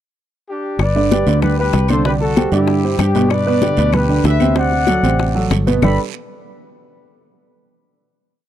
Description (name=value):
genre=latin, salsa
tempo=191 BPM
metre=4/4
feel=straight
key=G major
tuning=A4 = 440 Hz
part: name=mellow trumpet section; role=melody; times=0.5-6.0 s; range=D4 to B5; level=-20 LUFS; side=left 3 dB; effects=none
part: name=fingered electric bass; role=bass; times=0.8-6.0 s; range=G1 to G2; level=-17 LUFS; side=equal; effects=none
part: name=bongos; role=percussion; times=0.8-5.9 s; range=none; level=-23 LUFS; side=left 7 dB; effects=none
part: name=claves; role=percussion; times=0.8-5.9 s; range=none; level=-30 LUFS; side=left 16 dB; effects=none
part: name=congas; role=percussion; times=0.8-5.9 s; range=none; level=-22 LUFS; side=left 3 dB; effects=none
part: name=guiro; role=percussion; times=0.8-5.9 s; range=none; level=-33 LUFS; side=right 17 dB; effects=none
part: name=warm baby grand piano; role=accompaniment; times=1.0-6.0 s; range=B2 to D5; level=-18 LUFS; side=right 4 dB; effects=none
room=small room ambience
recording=dry, close 1970s-style studio recording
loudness=-13 LUFS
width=side -11 dB against mid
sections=0.0-0.8 pickup bar; 0.8-5.8 verse; 5.8-7.1 final chord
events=none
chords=0.0 N.C.; 0.8 G; 2.1 Csus2; 3.3 G; 4.6 D7; 5.8 Gadd9